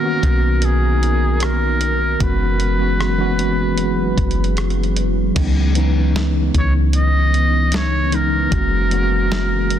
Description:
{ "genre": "contemporary R&B", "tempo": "76 BPM", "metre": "4/4", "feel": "straight", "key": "unclear", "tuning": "A4 = 440 Hz", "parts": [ { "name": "trumpet with metal mute", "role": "melody", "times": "0.0-9.8 s", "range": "G#4 to D#5", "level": "-22 LUFS", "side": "equal", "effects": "digital delay" }, { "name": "mellow tine electric piano", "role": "accompaniment", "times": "0.0-9.8 s", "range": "D#3 to F#4", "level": "-21 LUFS", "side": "equal", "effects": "medium stereo tremolo" }, { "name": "deep dark ambient pad", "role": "sustained chords", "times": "0.0-9.8 s", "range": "B2 to B4", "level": "-26 LUFS", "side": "right 1 dB", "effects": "chorus, built-in reverb" }, { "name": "soft 808-style bass", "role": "bass", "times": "0.2-9.8 s", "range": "F#1 to C#2", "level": "-18 LUFS", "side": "equal", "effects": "none" }, { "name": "dusty soul sampler-style drum kit", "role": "drums", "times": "0.2-9.8 s", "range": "crash cymbal, hi-hat, kick drum, rim click, snare drum", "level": "-23 LUFS", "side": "equal", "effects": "none" } ], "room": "digital ambience", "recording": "dense, heavily limited modern master", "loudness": "-15 LUFS", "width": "side -10 dB against mid", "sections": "0.0-5.4 A section; 5.4-9.8 B section", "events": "none", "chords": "0.0 Bmaj7; 2.2 F#9sus4; 5.4 C#m9; 8.5 F#9", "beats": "0.62 1.41 | 2.20 2.99 3.78 4.57 | 5.36 6.15 6.94 7.73 | 8.52 9.31" }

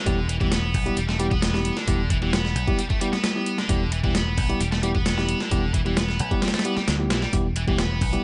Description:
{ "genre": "breakbeat, breaks", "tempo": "132 BPM", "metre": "4/4", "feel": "straight", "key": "E minor", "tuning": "A4 = 436 Hz", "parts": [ { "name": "high-gain distorted guitar", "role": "riff", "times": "0.0-8.2 s", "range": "D3 to B3", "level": "-31 LUFS", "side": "equal", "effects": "distortion, overdrive, digital delay" }, { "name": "tine electric piano", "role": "stabs", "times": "0.1-8.2 s", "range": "G3 to G4", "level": "-30 LUFS", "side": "equal", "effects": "digital delay" }, { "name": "fingered electric bass", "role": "bass", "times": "0.1-8.2 s", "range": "E1 to D2", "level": "-28 LUFS", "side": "equal", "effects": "tube saturation" }, { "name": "breakbeat sampler-style drum kit", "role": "drums", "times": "0.1-8.2 s", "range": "hi-hat, kick drum, snare drum", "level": "-27 LUFS", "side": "equal", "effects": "overdrive" }, { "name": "electronic hi-hat", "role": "drums", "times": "0.1-8.2 s", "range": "none", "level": "-40 LUFS", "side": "equal", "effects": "overdrive" } ], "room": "light reverb", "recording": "nothing above 10.3 kHz", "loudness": "-23 LUFS", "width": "mono", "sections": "0.0-8.2 A section", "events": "none", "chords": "0.0 Em", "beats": "| 0.06 0.52 0.97 1.43 | 1.88 2.33 2.79 3.24 | 3.70 4.15 4.61 5.06 | 5.52 5.97 6.42 6.88 | 7.33 7.79" }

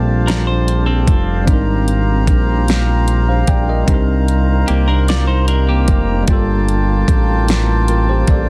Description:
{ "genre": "slow six-eight R&B", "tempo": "50 BPM (dotted quarters)", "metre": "6/8", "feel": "straight", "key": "unclear", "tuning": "A4 = 442 Hz", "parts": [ { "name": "tine electric piano", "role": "accompaniment", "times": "0.0-8.5 s", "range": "G3 to G5", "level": "-23 LUFS", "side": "equal", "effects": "none" }, { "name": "hand-pumped harmonium", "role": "sustained chords", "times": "0.0-8.5 s", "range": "Eb3 to Bb5", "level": "-25 LUFS", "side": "equal", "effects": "none" }, { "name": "smooth synth bass", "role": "bass", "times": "0.0-8.5 s", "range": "F1 to C2", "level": "-17 LUFS", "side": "equal", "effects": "none" }, { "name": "clean electric guitar", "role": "second line", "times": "0.3-6.3 s", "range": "Bb3 to D5", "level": "-24 LUFS", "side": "equal", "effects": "none" }, { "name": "smooth R&B drum kit", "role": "drums", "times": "0.3-8.5 s", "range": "hi-hat, kick drum, snare drum", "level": "-18 LUFS", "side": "equal", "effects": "vintage 12-bit sampler grit" } ], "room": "digital ambience", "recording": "dense, heavily limited modern master", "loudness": "-15 LUFS", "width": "mono", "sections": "0.0-8.5 A section", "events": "none", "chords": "0.0 Bbmaj13; 1.5 Abmaj9#11; 3.9 Cm9; 6.3 Gm9", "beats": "0.28 | 1.48 2.68 | 3.88 5.08 | 6.28 7.48" }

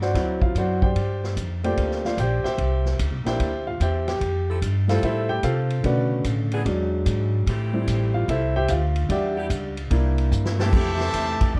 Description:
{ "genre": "jazz, big band swing", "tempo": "147 BPM", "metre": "4/4", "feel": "swing 66% on 8ths", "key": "unclear", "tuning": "A4 = 440 Hz", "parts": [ { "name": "warm concert grand piano", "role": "accompaniment", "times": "0.0-11.0 s", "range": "C#3 to G5", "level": "-28 LUFS", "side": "equal", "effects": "none" }, { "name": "upright bass", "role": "bass", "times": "0.0-11.6 s", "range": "A1 to C3", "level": "-26 LUFS", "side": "equal", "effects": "none" }, { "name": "swinging big-band drum kit", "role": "drums", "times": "0.0-11.6 s", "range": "crash cymbal, hi-hat, kick drum, ride cymbal, snare drum", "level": "-30 LUFS", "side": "equal", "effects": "none" }, { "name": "bright saxophone section", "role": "sustained chords", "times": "4.5-11.1 s", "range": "E3 to A4", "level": "-35 LUFS", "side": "equal", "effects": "none" }, { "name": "brilliant trumpet section", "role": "melody", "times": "10.6-11.6 s", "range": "Bb3 to A5", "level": "-29 LUFS", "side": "equal", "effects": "none" }, { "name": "clear trombone section", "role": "second line", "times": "10.6-11.6 s", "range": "C3 to D4", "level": "-32 LUFS", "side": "equal", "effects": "none" } ], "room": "light reverb", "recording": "dark, warm production", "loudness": "-23 LUFS", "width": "mono", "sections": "0.0-10.7 A section", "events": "grand piano solo 0.0-10.7; drum fill 10.3-10.7", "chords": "0.1 D7; 1.0 Gm11; 2.6 C7; 4.2 Fmaj7; 5.8 Bm7; 6.7 E7; 7.5 Am7; 9.1 Em7; 9.9 C7; 10.7 Fmaj9", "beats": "0.14 0.55 | 0.95 1.36 1.77 2.18 | 2.58 2.99 3.40 3.81 | 4.21 4.62 5.03 5.43 | 5.84 6.25 6.66 7.07 | 7.47 7.88 8.29 8.70 | 9.10 9.51 9.92 10.33 | 10.73 11.14 11.55" }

